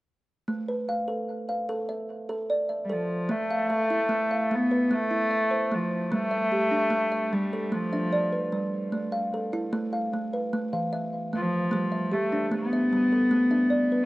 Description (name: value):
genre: world meditative, meditative tuned percussion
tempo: 150 BPM (eighths)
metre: 7/8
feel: straight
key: unclear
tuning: A4 = 442 Hz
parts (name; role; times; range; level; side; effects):
- kalimba; arpeggios; 0.5-14.1 s; E3 to F5; -28 LUFS; right 1 dB; tape echo
- warm cello; melody; 2.9-14.1 s; F3 to B3; -25 LUFS; left 1 dB; tape echo
room: wet spring reverb, RT60 1.2 s, small room ambience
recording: worn, warbling old tape, cassette tape, warbly pitch drift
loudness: -24 LUFS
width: side -18 dB against mid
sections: 0.5-3.3 A section; 3.3-14.1 B section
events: none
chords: 0.5 A5; 3.3 Am; 6.1 G; 8.9 A5; 11.7 G